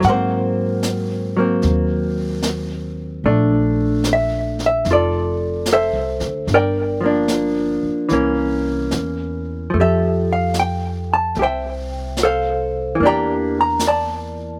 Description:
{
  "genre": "jazz ballad",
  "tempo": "74 BPM",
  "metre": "4/4",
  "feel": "swing 66% on 8ths",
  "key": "unclear",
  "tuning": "A4 = 440 Hz",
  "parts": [
    { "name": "vintage hollow-body jazz guitar", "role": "accompaniment", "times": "0.0-14.6 s", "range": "E3 to Bb5", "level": "-20 LUFS", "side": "equal", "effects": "slapback echo" },
    { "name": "upright bass", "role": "bass", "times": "0.0-14.6 s", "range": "F1 to G#2", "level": "-26 LUFS", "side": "equal", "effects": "none" },
    { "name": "jazz brush drum kit", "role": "drums", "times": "0.0-14.6 s", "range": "brushed snare drum, hi-hat, snare drum", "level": "-30 LUFS", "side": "equal", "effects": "none" }
  ],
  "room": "little or no reverb",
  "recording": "recorded outdoors, with no room sound",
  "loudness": "-19 LUFS",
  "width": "mono",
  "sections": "0.0-14.6 A section",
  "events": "none",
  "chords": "0.0 G#9; 3.3 Bbmaj9#11; 6.5 Gm7; 8.1 C7b9; 9.7 Fmaj9; 13.0 Em7b5",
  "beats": "| 0.03 0.84 1.64 2.45 | 3.25 4.06 4.87 5.67 | 6.48 7.29 8.10 8.91 | 9.73 10.54 11.35 12.16 | 12.98 13.79"
}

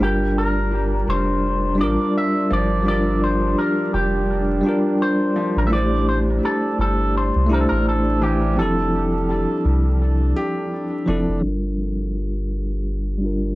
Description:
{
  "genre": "trip hop",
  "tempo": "84 BPM",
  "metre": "4/4",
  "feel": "swing 58% on 16ths",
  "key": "G dorian",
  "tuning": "A4 = 439 Hz",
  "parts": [
    { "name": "electric guitar with an envelope filter", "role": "melody", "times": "0.0-10.0 s", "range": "G4 to E5", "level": "-24 LUFS", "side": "equal", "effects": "tape echo" },
    { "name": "bell-like tine electric piano", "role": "accompaniment", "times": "0.0-13.6 s", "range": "F3 to C5", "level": "-22 LUFS", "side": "equal", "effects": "harmonic tremolo, vintage 12-bit sampler grit, tape echo" },
    { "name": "warbly tape-like pad", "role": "sustained chords", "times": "0.3-13.6 s", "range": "D4 to G4", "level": "-29 LUFS", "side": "equal", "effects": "chorus, built-in reverb, vintage 12-bit sampler grit" },
    { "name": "felt-muted upright piano", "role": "arpeggios", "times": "0.0-11.5 s", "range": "E3 to G4", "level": "-28 LUFS", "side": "left 1 dB", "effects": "analog delay" },
    { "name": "soft dub sub bass", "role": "bass", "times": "0.0-13.6 s", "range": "F1 to C2", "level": "-22 LUFS", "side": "equal", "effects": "none" }
  ],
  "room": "little or no reverb",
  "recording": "dry, gritty hardware recording, vinyl crackle, low-pass filter",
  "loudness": "-18 LUFS",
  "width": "side -18 dB against mid",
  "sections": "0.0-11.4 A section; 11.4-13.6 B section",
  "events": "filter sweep 11.4-13.6",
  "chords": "0.0 Gm7; 5.7 Am7; 8.6 Fmaj7; 11.4 Gm7",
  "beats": "| 0.00 0.72 1.43 2.15 | 2.86 3.57 4.29 5.00 | 5.72 6.43 7.15 7.86 | 8.57 9.29 10.00 10.72 | 11.43 12.15 12.86"
}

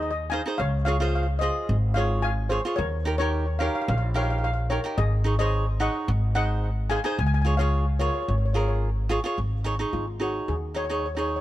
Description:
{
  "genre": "calypso",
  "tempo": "109 BPM",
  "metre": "4/4",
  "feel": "straight",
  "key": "unclear",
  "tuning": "A4 = 440 Hz",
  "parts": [
    { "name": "steel pan", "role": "melody", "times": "0.0-11.4 s", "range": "F4 to Ab5", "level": "-30 LUFS", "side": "left 2 dB", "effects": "tape echo" },
    { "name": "cavaquinho", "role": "accompaniment", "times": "0.0-11.4 s", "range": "Eb4 to Eb5", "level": "-29 LUFS", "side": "right 2 dB", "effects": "none" },
    { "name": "upright bass", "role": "bass", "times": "0.0-11.4 s", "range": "Ab1 to Eb2", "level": "-25 LUFS", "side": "equal", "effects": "none" }
  ],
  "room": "little or no reverb",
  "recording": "none",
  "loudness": "-23 LUFS",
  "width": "side -14 dB against mid",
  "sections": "0.0-9.4 A section; 9.4-11.4 B section",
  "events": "steel pan solo 9.4-11.4",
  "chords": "0.0 Ab; 2.8 Eb7; 5.0 Absus4; 6.1 Ab7; 7.2 Db; 9.4 Absus4",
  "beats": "0.05 | 0.59 1.14 1.69 2.24 | 2.79 3.33 3.88 4.43 | 4.98 5.53 6.08 6.63 | 7.18 7.73 8.28 8.83 | 9.38 9.93 10.48 11.04"
}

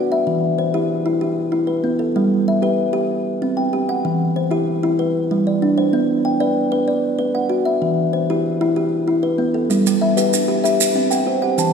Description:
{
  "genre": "southern african traditional, mbira-style interlocking cycle",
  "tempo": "127 BPM (dotted quarters)",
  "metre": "12/8",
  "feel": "straight",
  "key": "unclear",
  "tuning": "A4 = 440 Hz",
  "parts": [
    { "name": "kalimba", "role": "arpeggios", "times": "0.0-11.7 s", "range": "E3 to G5", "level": "-16 LUFS", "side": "equal", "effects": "none" },
    { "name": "maracas", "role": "percussion", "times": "9.7-11.7 s", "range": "none", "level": "-23 LUFS", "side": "right 7 dB", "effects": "none" },
    { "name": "kalimba", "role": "arpeggios", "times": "9.9-11.7 s", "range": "G3 to A5", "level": "-21 LUFS", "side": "right 5 dB", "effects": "none" }
  ],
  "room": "wet concert hall reverb, RT60 2.1 s",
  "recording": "recorded in a church or concert hall",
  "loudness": "-16 LUFS",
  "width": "side -6 dB against mid",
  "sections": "0.0-9.7 A section; 9.7-11.7 A section",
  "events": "none",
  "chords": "0.3 Em; 2.2 G; 3.1 C5; 4.0 Em; 5.0 G; 5.9 Bm; 7.8 Em; 9.7 G; 10.7 C",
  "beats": "| 0.27 0.74 1.22 1.69 | 2.16 2.63 3.10 3.58 | 4.05 4.52 4.99 5.46 | 5.94 6.41 6.88 7.35 | 7.82 8.30 8.77 9.24 | 9.71 10.18 10.65 11.12 | 11.59"
}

